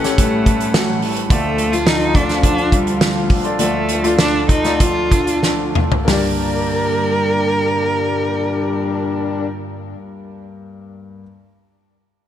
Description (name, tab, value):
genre	piano-driven pop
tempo	91-107 BPM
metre	4/4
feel	straight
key	G minor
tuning	A4 = 441 Hz
part	warm cello	melody	0.0-9.5 s	G3 to Bb4	-20 LUFS	right 1 dB	ping-pong delay
part	mellow French horn section	second line	0.0-9.5 s	Bb2 to G4	-24 LUFS	left 5 dB	ping-pong delay
part	warm grand piano	accompaniment	0.0-11.2 s	A1 to D5	-24 LUFS	left 4 dB	none
part	rich studio string section	sustained chords	0.0-9.5 s	D2 to F#5	-28 LUFS	equal	none
part	electric guitar at the edge of break-up	riff	0.0-10.0 s	G2 to Bb4	-24 LUFS	right 7 dB	spring reverb
part	loose indie drum kit	drums	0.0-6.2 s	hi-hat, kick drum, snare drum, toms	-18 LUFS	equal	none
room	light reverb, small room ambience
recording	none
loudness	-14 LUFS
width	side -10 dB against mid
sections	0.0-6.1 A section; 6.1-8.7 B section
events	slowing down 1.3-6.1; drum fill 5.4-6.1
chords	0.0 A7; 1.3 Dm; 6.1 Gm